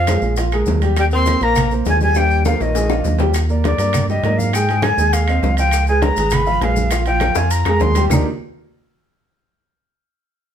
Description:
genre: Afro-Cuban jazz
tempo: 202 BPM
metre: 4/4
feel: straight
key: Eb major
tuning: A4 = 440 Hz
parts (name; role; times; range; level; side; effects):
- breathy reedy jazz flute; melody; 0.0-8.0 s; D5 to C6; -20 LUFS; left 1 dB; none
- mellow tenor saxophone; second line; 0.0-3.2 s; Eb3 to C4; -24 LUFS; left 5 dB; none
- warm grand piano; accompaniment; 0.0-8.3 s; Eb3 to Ab5; -21 LUFS; right 2 dB; none
- rubbery square bass; bass; 0.0-8.2 s; Ab1 to Ab2; -18 LUFS; equal; none
- bongos; percussion; 0.1-8.2 s; none; -28 LUFS; left 6 dB; none
- claves; percussion; 0.1-8.2 s; none; -32 LUFS; left 5 dB; none
- congas; percussion; 0.1-8.2 s; none; -24 LUFS; equal; none
- maracas; percussion; 0.1-8.2 s; none; -32 LUFS; left 5 dB; none
- timbales; percussion; 0.1-8.2 s; none; -28 LUFS; right 5 dB; none
room: light reverb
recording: band playing live in one room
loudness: -14 LUFS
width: side -9 dB against mid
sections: 0.0-3.3 A section; 3.3-8.1 B section; 8.1-9.3 C section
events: drum fill 2.2-3.3, 7.4-8.1; flute solo 3.3-8.1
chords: 0.4 Bb5; 1.0 Eb6; 2.8 Bb7; 3.3 Ebmaj7; 4.5 Ab6; 5.7 Db7; 6.9 Bb5; 8.1 Ebmaj7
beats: 0.08 0.38 0.67 | 0.97 1.27 1.56 1.86 | 2.16 2.45 2.75 3.05 | 3.35 3.64 3.94 4.24 | 4.54 4.84 5.13 5.43 | 5.73 6.03 6.33 6.62 | 6.92 7.22 7.51 7.81 | 8.11

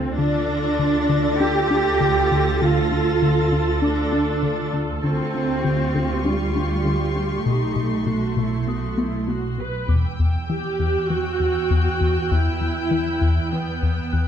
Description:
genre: cinematic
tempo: 99 BPM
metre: 4/4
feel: straight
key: D minor, E minor from 9.9 s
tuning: A4 = 441 Hz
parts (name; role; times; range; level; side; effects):
- rich symphonic viola section; accompaniment; 0.0-14.3 s; B3 to B4; -26 LUFS; right 1 dB; none
- plucky analog bass; riff; 0.0-14.3 s; E2 to D4; -23 LUFS; left 2 dB; none
- dark symphonic double bass section; bass; 0.0-10.4 s; E1 to D2; -25 LUFS; right 2 dB; none
- warm symphonic cello section; bass; 0.0-14.3 s; E2 to G4; -24 LUFS; right 2 dB; none
- celesta; texture; 0.0-14.3 s; D5 to G6; -35 LUFS; left 4 dB; none
- warm symphonic violin section; texture; 0.2-14.3 s; C6 to Bb6; -34 LUFS; left 4 dB; none
- rich symphonic violin section; melody; 9.9-14.3 s; G5; -33 LUFS; right 1 dB; none
room: moderate scoring stage reverb, RT60 1.6 s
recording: dark, warm production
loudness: -19 LUFS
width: side -8 dB against mid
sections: 0.0-9.9 A section; 9.9-14.3 B section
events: none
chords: 0.2 Dm; 5.0 Fadd9/D; 7.5 B7; 9.9 Emadd9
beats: | 0.19 0.79 1.40 2.01 | 2.61 3.22 3.82 4.43 | 5.04 5.64 6.25 6.85 | 7.46 8.07 8.67 9.28 | 9.88 10.49 11.10 11.70 | 12.31 12.91 13.52 14.13

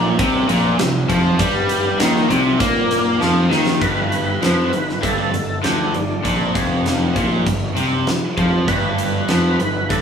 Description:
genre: classic rock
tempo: 99 BPM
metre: 4/4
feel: straight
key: G mixolydian from 3.8 s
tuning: A4 = 440 Hz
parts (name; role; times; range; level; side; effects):
- crunchy overdriven guitar; riff; 0.0-10.0 s; F2 to Bb3; -21 LUFS; left 5 dB; none
- distorted electric guitar; riff; 0.0-3.8 s; Bb2 to Bb3; -23 LUFS; equal; distortion
- tight distorted guitar; riff; 0.0-10.0 s; F2 to Bb3; -24 LUFS; right 6 dB; distortion
- fuzz picked electric bass; bass; 0.0-10.0 s; F1 to Bb2; -22 LUFS; right 1 dB; overdrive
- huge arena drum kit; drums; 0.2-10.0 s; hi-hat, kick drum, snare drum; -21 LUFS; right 1 dB; none
- overdriven tonewheel organ; melody; 3.8-10.0 s; D4 to B4; -24 LUFS; right 2 dB; slow rotary speaker, chorus vibrato
room: moderate large studio reverb, RT60 0.8 s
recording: band playing live in one room, small room reverb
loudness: -15 LUFS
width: side -7 dB against mid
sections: 0.0-3.8 A section; 3.8-10.0 B section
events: drum fill 3.2-3.8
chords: 0.0 C5; 3.8 G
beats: 0.18 0.79 | 1.39 1.99 2.60 3.20 | 3.81 4.42 5.02 5.63 | 6.24 6.85 7.46 8.07 | 8.68 9.29 9.90

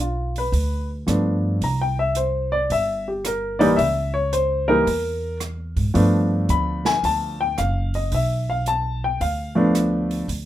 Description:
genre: jazz piano trio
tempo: 111 BPM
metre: 4/4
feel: swing 67% on 8ths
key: G mixolydian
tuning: A4 = 439 Hz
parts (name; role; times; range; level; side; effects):
- warm baby grand piano; melody; 0.0-10.3 s; E3 to B5; -21 LUFS; left 1 dB; none
- upright bass; bass; 0.0-10.5 s; F#1 to Ab2; -24 LUFS; right 1 dB; none
- open jazz drum kit; drums; 0.0-10.5 s; hi-hat, kick drum, rim click, snare drum; -32 LUFS; right 4 dB; none
room: light reverb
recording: minimal, uncompressed stereo recording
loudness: -19 LUFS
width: side -13 dB against mid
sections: 0.0-10.5 A section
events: none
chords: 0.0 G9; 1.6 C7; 3.8 C#m6; 6.0 G9 (rootless)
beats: 0.53 1.07 | 1.62 2.16 2.70 3.24 | 3.78 4.33 4.87 5.41 | 5.95 6.49 7.04 7.58 | 8.12 8.66 9.21 9.75 | 10.29

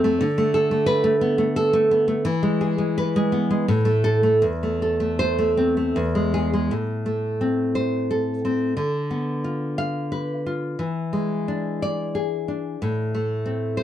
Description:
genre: romantic piece for solo classical guitar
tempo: 77-96 BPM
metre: 3/4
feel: rubato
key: A minor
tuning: A4 = 438 Hz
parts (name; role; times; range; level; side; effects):
- nylon-string guitar; solo; 0.0-13.8 s; E2 to F5; -20 LUFS; equal; none
room: light reverb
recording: dry, close 1970s-style studio recording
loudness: -20 LUFS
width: side -11 dB against mid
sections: 0.0-6.7 A section; 6.7-13.8 B section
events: none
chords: 0.2 Bm7/D; 2.3 E; 3.7 N.C.; 4.4 Am/E; 6.0 E; 6.7 Am; 8.8 Bdim/D; 10.8 E7; 12.8 Am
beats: | 0.21 0.89 1.58 | 2.27 2.97 3.69 | 4.44 5.21 5.97 | 6.72 7.42 8.11 | 8.79 9.45 10.13 | 10.80 11.49 12.15 | 12.81 13.46

